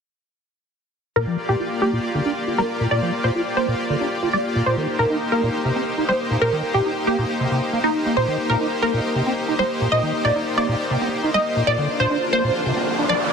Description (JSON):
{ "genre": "trance", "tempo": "137 BPM", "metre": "4/4", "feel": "straight", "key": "C minor", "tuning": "A4 = 440 Hz", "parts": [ { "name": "wide unison pluck", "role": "melody", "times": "1.2-13.3 s", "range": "Eb4 to Eb5", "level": "-22 LUFS", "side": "equal", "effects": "phaser, digital delay" }, { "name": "supersaw pad", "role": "sustained chords", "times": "1.2-13.3 s", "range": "Bb3 to D5", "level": "-24 LUFS", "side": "left 1 dB", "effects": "none" }, { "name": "liquid acid bass", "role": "arpeggios", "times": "1.2-13.1 s", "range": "Bb2 to F4", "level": "-24 LUFS", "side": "right 1 dB", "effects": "wide subtle chorus, digital delay" }, { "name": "riser", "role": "sound effects", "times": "12.0-13.3 s", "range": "none", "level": "-26 LUFS", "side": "right 1 dB", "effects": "none" } ], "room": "moderate lush hall reverb, RT60 2.7 s", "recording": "dense, heavily limited modern master, lossy compression artefacts", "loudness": "-19 LUFS", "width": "side -6 dB against mid", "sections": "1.2-13.3 A section", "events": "filter sweep on synth pluck 1.2-13.3; filter sweep on acid bass 1.2-13.3; riser 12.0-13.3", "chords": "1.2 Gm7; 4.7 Cm7; 11.7 Bbadd9" }